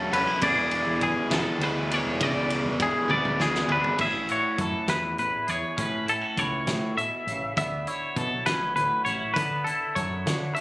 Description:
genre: math rock and midwest emo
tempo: 67 BPM (dotted quarters)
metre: 6/8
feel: straight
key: A major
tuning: A4 = 440 Hz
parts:
  - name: twangy electric guitar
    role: accompaniment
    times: 0.0-10.6 s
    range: E2 to G#4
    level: -31 LUFS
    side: right 2 dB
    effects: lush chorus
  - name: twangy electric guitar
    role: arpeggios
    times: 0.0-10.6 s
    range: G#4 to E5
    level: -26 LUFS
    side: left 1 dB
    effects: none
  - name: overdriven electric guitar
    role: riff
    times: 0.0-4.0 s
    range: E3 to G#4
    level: -28 LUFS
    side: equal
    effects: none
  - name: growling fingered electric bass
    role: bass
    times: 0.0-10.5 s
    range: E1 to D3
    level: -32 LUFS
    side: equal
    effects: overdrive
  - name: loose indie drum kit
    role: drums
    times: 0.1-10.6 s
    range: crash cymbal, hi-hat, kick drum, ride cymbal, snare drum, toms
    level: -32 LUFS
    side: equal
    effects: none
room: little or no reverb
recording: recorded on a phone in the room, studio reverb, compression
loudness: -23 LUFS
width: side -20 dB against mid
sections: 0.0-4.0 A section; 4.0-10.6 B section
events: drum fill 3.1-4.0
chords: 0.4 E7; 4.0 Amaj9; 7.6 Dmaj13

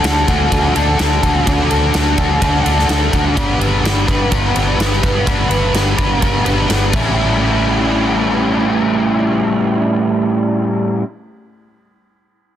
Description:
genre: rock, shoegaze and dream pop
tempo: 126 BPM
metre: 4/4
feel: straight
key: A mixolydian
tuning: A4 = 440 Hz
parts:
  - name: biting overdriven guitar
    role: riff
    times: 0.0-11.1 s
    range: A2 to B4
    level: -15 LUFS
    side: equal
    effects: analog chorus
  - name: vintage muted fingered electric bass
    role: bass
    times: 0.0-11.0 s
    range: G1 to D2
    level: -19 LUFS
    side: equal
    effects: none
  - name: big rock drum kit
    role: drums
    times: 0.0-7.0 s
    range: crash cymbal, kick drum, ride cymbal, snare drum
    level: -19 LUFS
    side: equal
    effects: none
room: small room ambience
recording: dense, heavily limited modern master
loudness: -13 LUFS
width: side -10 dB against mid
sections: 0.0-7.2 A section; 7.2-10.9 B section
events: none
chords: 0.0 D; 3.4 G; 6.9 A7

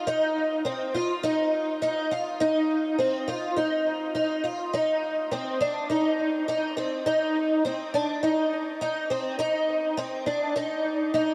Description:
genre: dream pop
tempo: 103 BPM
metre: 4/4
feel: straight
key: C minor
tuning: A4 = 441 Hz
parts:
  - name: picked twelve-string acoustic guitar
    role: solo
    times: 0.0-11.3 s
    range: C4 to F4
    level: -26 LUFS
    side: equal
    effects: ensemble chorus, tape echo
room: wet shimmer reverb, RT60 7.5 s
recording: dark, warm production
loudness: -27 LUFS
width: mono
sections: 0.0-4.7 A section; 4.7-11.3 B section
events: none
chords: none

